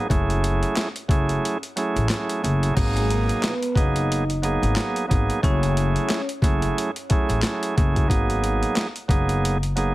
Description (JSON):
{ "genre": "hip hop, boom-bap hip-hop", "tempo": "90 BPM", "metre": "4/4", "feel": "swing 56% on 16ths", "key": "G# phrygian", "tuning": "A4 = 440 Hz", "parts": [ { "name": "bright tonewheel organ", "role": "accompaniment", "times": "0.0-9.9 s", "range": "B2 to G#4", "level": "-24 LUFS", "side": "right 2 dB", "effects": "cassette tape, high-pass filter, low-pass filter, plate reverb" }, { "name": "upright bass", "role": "bass", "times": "0.1-9.9 s", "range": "F#1 to A1", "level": "-24 LUFS", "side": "left 1 dB", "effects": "none" }, { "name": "boom bap sampler-style drum kit", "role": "drums", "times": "0.1-9.9 s", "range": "crash cymbal, handclaps, hi-hat, kick drum, snare drum", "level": "-24 LUFS", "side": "equal", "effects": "none" }, { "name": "vibraphone with soft mallets", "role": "melody", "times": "3.0-6.3 s", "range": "G#3 to D#5", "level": "-29 LUFS", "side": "left 1 dB", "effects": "high-pass filter, low-pass filter, plate reverb, ping-pong delay" } ], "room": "light reverb", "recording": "heavily compressed radio sound, multiband compression", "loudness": "-20 LUFS", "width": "side -17 dB against mid", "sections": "0.0-2.8 A section; 2.8-9.9 B section", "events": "kick muted 1.4-2.8", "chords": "0.1 F#m9; 2.8 G#m9; 5.4 F#m9; 8.1 G#m9", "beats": "| 0.10 0.77 1.43 2.10 | 2.77 3.43 4.10 4.77 | 5.43 6.10 6.77 7.43 | 8.10 8.77 9.43" }